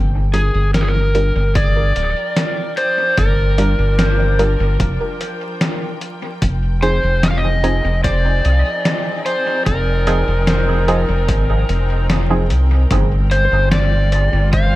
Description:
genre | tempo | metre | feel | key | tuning
ambient dub | 74 BPM | 4/4 | straight | unclear | A4 = 441 Hz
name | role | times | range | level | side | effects
rich studio string section | sustained chords | 0.0-14.8 s | D3 to G5 | -29 LUFS | equal | none
concert harp | arpeggios | 0.0-2.2, 13.4-14.8 s | Bb3 to G5 | -33 LUFS | left 5 dB | none
round analog bass | bass | 0.0-14.8 s | D1 to C2 | -16 LUFS | equal | none
overdriven slide guitar | melody | 0.3-14.8 s | Ab4 to F5 | -20 LUFS | equal | tape echo
filtered dub chord stab | stabs | 0.3-12.5 s | F3 to Bb4 | -24 LUFS | right 2 dB | chorus, dub echo
lo-fi sampler-style drum kit | drums | 0.3-14.7 s | hi-hat, snare drum | -22 LUFS | equal | dub echo
electronic kick drum | drums | 1.6-14.7 s | none | -20 LUFS | equal | overdrive
room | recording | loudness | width
light reverb, digital ambience | vinyl crackle | -14 LUFS | side -17 dB against mid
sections
0.0-14.8 A section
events
fade-in on string section 0.0-14.8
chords
0.0 Gm7; 6.4 Fm7; 12.9 Gm7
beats
0.75 1.56 2.37 | 3.18 3.99 4.80 5.61 | 6.42 7.23 8.04 8.86 | 9.67 10.48 11.29 12.10 | 12.91 13.72 14.53

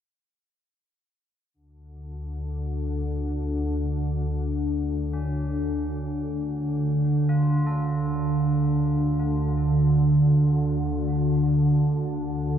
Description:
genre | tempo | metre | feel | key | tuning
dark ambient drone | free time | none | none | D harmonic minor | A4 = 441 Hz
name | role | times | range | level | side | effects
organ-like drone | drone | 2.0-12.6 s | D2 to D3 | -22 LUFS | equal | ensemble chorus, built-in reverb
tubular bells | arpeggios | 5.1-12.6 s | C#4 to A4 | -41 LUFS | equal | ping-pong delay
room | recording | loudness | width
wet cathedral reverb, RT60 6.1 s | dark, warm production | -22 LUFS | side -9 dB against mid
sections
1.5-12.6 A section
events
fade-in on tubular bells 1.5-12.6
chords
1.5 Dm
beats
free time

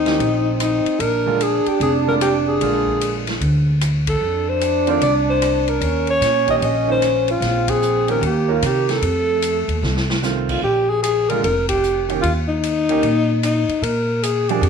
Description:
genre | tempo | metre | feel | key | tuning
jazz, small-group swing and bop | 150 BPM | 4/4 | swing 65% on 8ths | Bb mixolydian | A4 = 440 Hz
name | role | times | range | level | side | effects
breathy alto saxophone | melody | 0.0-14.7 s | Eb4 to Eb5 | -19 LUFS | left 2 dB | none
dark trombone | second line | 0.0-10.4 s | A3 to D4 | -23 LUFS | right 7 dB | none
upright bass | bass | 0.0-14.7 s | F1 to C3 | -22 LUFS | equal | none
clear grand piano | accompaniment | 0.1-14.6 s | D3 to Db5 | -25 LUFS | right 11 dB | none
swinging big-band drum kit | drums | 0.1-14.7 s | crash cymbal, hi-hat, kick drum, ride cymbal, rim click, snare drum | -27 LUFS | left 2 dB | none
room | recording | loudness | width
wet plate reverb, RT60 0.9 s, small room ambience | 1960s-style stereo | -16 LUFS | side -6 dB against mid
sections
0.0-10.6 A section; 10.6-14.7 A section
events
band accent 4.0, 7.6, 11.6; drum fill 9.8-10.2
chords
0.0 Eb7(no3); 1.0 Bb7; 4.2 F5; 5.8 Eb7(no3); 8.2 Eb5; 9.0 F7; 10.6 Bb7(no3); 12.2 Eb5; 13.8 Bb7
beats
0.20 0.60 | 1.00 1.40 1.80 2.21 | 2.61 3.01 3.41 3.81 | 4.21 4.61 5.01 5.42 | 5.82 6.22 6.62 7.02 | 7.42 7.83 8.23 8.63 | 9.03 9.43 9.83 10.23 | 10.63 11.03 11.43 11.83 | 12.23 12.63 13.04 13.44 | 13.84 14.23 14.63

